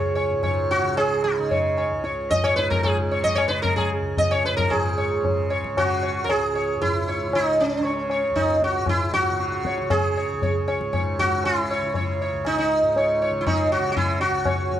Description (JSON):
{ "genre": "indian classical, Hindustani", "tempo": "115 BPM", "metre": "5/4", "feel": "uneven beats", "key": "C# raga kafi", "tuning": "A4 = 440 Hz", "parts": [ { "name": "sitar", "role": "melody", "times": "0.0-14.8 s", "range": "C#4 to D#5", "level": "-22 LUFS", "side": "right 1 dB", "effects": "none" }, { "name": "tanpura", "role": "drone", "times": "0.0-14.8 s", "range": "C#2 to C#3", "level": "-31 LUFS", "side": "equal", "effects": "none" }, { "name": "tabla", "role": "percussion", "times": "0.2-14.8 s", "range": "none", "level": "-26 LUFS", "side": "left 2 dB", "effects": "none" } ], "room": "light reverb", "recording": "close, detailed microphones", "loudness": "-20 LUFS", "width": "side -11 dB against mid", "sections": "0.0-4.7 A section; 4.7-14.8 A section", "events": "speeding up 0.0-14.8", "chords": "none" }